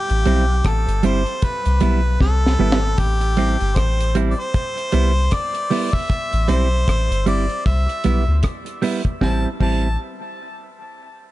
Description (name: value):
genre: roots reggae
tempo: 77 BPM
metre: 4/4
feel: swing 59% on 16ths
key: A minor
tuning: A4 = 439 Hz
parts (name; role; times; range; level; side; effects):
- bright harmonica; melody; 0.0-10.0 s; G4 to A5; -24 LUFS; left 1 dB; dub echo
- soft dub sub bass; bass; 0.1-10.0 s; G1 to D2; -18 LUFS; equal; none
- deep reggae drum kit; drums; 0.1-9.8 s; crash cymbal, hi-hat, kick drum, rim click, snare drum; -22 LUFS; equal; none
- clean electric guitar; accompaniment; 0.3-9.9 s; G3 to E4; -24 LUFS; right 5 dB; dub echo
room: small room ambience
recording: dark, warm production, nothing above 11.0 kHz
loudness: -16 LUFS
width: side -16 dB against mid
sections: 0.0-3.0 A section; 3.0-9.2 B section; 9.2-11.3 C section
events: drum fill 2.2-3.0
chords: 0.0 Am7; 1.4 Cmaj7; 3.0 Am7; 4.5 Cmaj7; 6.1 Am7; 7.7 Cmaj7; 9.2 Am7